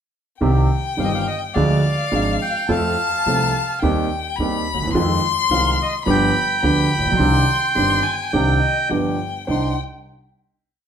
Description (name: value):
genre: tango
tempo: 106 BPM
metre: 4/4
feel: rubato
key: C harmonic minor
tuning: A4 = 440 Hz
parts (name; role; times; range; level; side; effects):
- warm violin; second line; 0.4-9.7 s; Eb5 to C6; -23 LUFS; left 7 dB; none
- warm concert grand piano; accompaniment; 0.4-9.7 s; G1 to C5; -20 LUFS; right 2 dB; none
- upright bass; bass; 0.4-9.7 s; G1 to F2; -23 LUFS; equal; none
- bandoneon; melody; 1.0-9.8 s; D5 to C6; -22 LUFS; right 2 dB; none
room: wet large studio reverb, RT60 0.9 s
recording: band playing live in one room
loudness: -17 LUFS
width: side -8 dB against mid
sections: 0.4-9.5 A section; 9.5-10.9 final chord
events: none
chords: 0.4 Cm; 1.6 Ddim; 2.7 F; 3.8 Cm/Eb; 4.9 Fm7; 6.1 G7; 7.2 Cmadd9; 8.9 G7; 9.5 Cmadd9